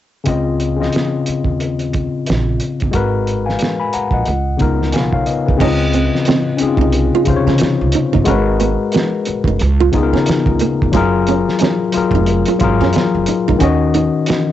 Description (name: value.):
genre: R&B, neo-soul.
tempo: 90 BPM.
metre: 4/4.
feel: swing 59% on 16ths.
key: Db major.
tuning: A4 = 439 Hz.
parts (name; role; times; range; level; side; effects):
tine electric piano; accompaniment; 0.2-14.5 s; C3 to Cb6; -16 LUFS; left 5 dB; overdrive, cassette tape.
upright bass; bass; 0.3-14.1 s; F1 to Db3; -19 LUFS; right 2 dB; transformer saturation.
cloth-damped thuddy drum kit; drums; 0.3-14.5 s; crash cymbal, hi-hat, kick drum, snare drum; -19 LUFS; right 2 dB; cassette tape.
nylon-string guitar; second line; 5.6-14.4 s; Bb3 to F4; -19 LUFS; right 9 dB; cassette tape.
room: light reverb.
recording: home recording on cassette, nothing above 8.0 kHz.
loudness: -13 LUFS.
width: side -12 dB against mid.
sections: 0.3-5.6 A section; 5.6-14.5 B section.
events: none.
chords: 0.3 Dbmaj9; 2.9 Abm9; 4.3 Db13; 5.6 Dbmaj9; 8.3 Abm9; 9.6 Db13; 10.9 Gbmaj9; 13.6 Ebm7.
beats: | 0.27 0.93 1.60 2.27 | 2.93 3.60 4.27 4.93 | 5.60 6.27 6.93 7.60 | 8.27 8.93 9.60 10.27 | 10.93 11.60 12.27 12.93 | 13.60 14.27.